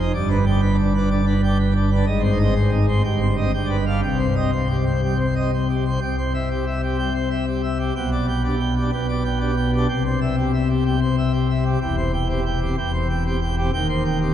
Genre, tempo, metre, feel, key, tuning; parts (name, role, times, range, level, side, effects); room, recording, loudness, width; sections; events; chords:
classical, organ toccata; 124 BPM; 4/4; straight; C minor, C major from 6.0 s; A4 = 438 Hz
pipe organ, plenum; solo; 0.0-14.3 s; Eb1 to G5; -18 LUFS; equal
wet cathedral reverb, RT60 4.9 s; dark, warm production; -18 LUFS; side -10 dB against mid
0.0-6.0 A section; 6.0-14.3 B section
0.1 G; 2.1 Ab; 3.0 Cm/G; 3.5 G7; 4.0 Cm; 6.0 C; 8.0 G/B; 9.9 C; 11.8 C/E; 13.7 Cm/Eb